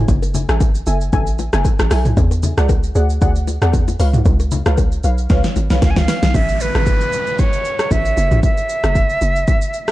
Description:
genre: amapiano.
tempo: 115 BPM.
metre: 4/4.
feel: swing 55% on 16ths.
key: F# minor.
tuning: A4 = 439 Hz.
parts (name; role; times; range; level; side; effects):
hollow log drum bass; bass; 0.0-9.4 s; F#1 to E2; -17 LUFS; equal; none.
deep house drum kit; drums; 0.1-9.9 s; hi-hat, kick drum, rim click, shaker, snare drum, toms; -17 LUFS; equal; vintage 12-bit sampler grit.
congas and bongos; percussion; 0.1-6.2 s; none; -25 LUFS; left 5 dB; none.
deep mellow chord stab; stabs; 0.5-6.2 s; G#4 to G#5; -25 LUFS; left 2 dB; chorus, tape echo.
silver concert flute; melody; 5.8-9.9 s; B4 to G#5; -20 LUFS; right 2 dB; tape echo.
downlifter; sound effects; 6.3-9.9 s; none; -28 LUFS; equal; none.
room: little or no reverb.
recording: dark, warm production.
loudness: -14 LUFS.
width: side -16 dB against mid.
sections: 0.0-6.3 A section; 6.3-9.9 B section.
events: drop 0.0-6.3; drum fill 5.3-6.3.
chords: 0.0 F#m9; 2.2 E9; 4.0 C#7; 6.3 Amaj7; 8.2 F#7(no3).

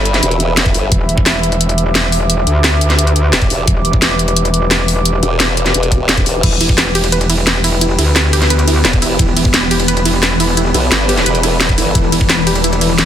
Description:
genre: dark technical drum and bass.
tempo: 174 BPM.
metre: 4/4.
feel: straight.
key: E minor.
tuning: A4 = 440 Hz.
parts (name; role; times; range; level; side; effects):
formant-sweep wobble bass; bass; 0.0-0.9, 3.3-6.4, 8.8-11.9 s; E1 to B1; -16 LUFS; equal; chorus, tube saturation.
warbly tape-like pad; texture; 0.0-13.1 s; G4 to E6; -20 LUFS; left 1 dB; chorus, built-in reverb, sidechain pumping.
drum and bass drum kit; drums; 0.1-13.1 s; crash cymbal, hi-hat, ride cymbal, snare drum; -15 LUFS; equal; none.
electronic kick drum; drums; 0.7-1.2, 3.4-6.8, 8.9-9.5, 11.7-12.3 s; none; -15 LUFS; equal; none.
metallic wobble bass; bass; 0.9-13.1 s; E1 to D2; -15 LUFS; equal; chorus, overdrive.
swarming drone; sustained chords; 7.4-13.1 s; E3 to A4; -20 LUFS; equal; built-in reverb, sidechain pumping.
warbly dusty pluck; arpeggios; 6.4-13.1 s; E4 to B4; -21 LUFS; right 4 dB; chorus, sidechain pumping, tape echo.
room: light reverb.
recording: dense, heavily limited modern master.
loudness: -10 LUFS.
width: side -10 dB against mid.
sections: 0.0-13.1 A section.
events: none.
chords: 0.0 Em.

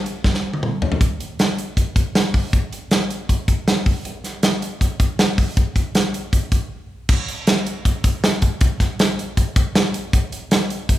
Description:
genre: indie pop.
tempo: 158 BPM.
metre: 4/4.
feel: straight.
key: none.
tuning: none.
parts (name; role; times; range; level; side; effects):
modern studio drum kit; drums; 0.1-11.0 s; crash cymbal, hi-hat, kick drum, snare drum, toms; -17 LUFS; equal; none.
room: light reverb.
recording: none.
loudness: -17 LUFS.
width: side -14 dB against mid.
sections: 0.0-1.0 A section; 1.0-7.1 B section; 7.1-11.0 A section.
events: drum fill 0.2-1.0; break 6.7-7.1.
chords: none.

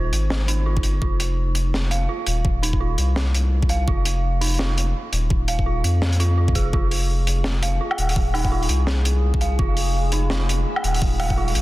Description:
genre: half-time drum and bass.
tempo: 168 BPM.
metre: 4/4.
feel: swing 60% on 16ths, half-time.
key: F minor.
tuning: A4 = 440 Hz.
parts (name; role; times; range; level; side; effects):
dark detuned synth bell; arpeggios; 0.0-11.6 s; Eb4 to F5; -28 LUFS; right 4 dB; chorus, dub echo.
saturated sub bass; bass; 0.0-11.6 s; Eb1 to F2; -21 LUFS; equal; none.
crunchy breakbeat drum kit; drums; 0.1-11.6 s; hi-hat, snare drum, woodblock; -27 LUFS; equal; none.
electronic kick drum; drums; 0.8-11.4 s; none; -22 LUFS; equal; overdrive.
metallic inharmonic drone; texture; 7.3-11.6 s; Ab3 to Ab4; -32 LUFS; left 2 dB; chorus, built-in reverb.
room: small room ambience.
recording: dense, heavily limited modern master.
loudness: -18 LUFS.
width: side -18 dB against mid.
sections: 0.0-11.6 A section.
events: none.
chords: 0.0 Fm.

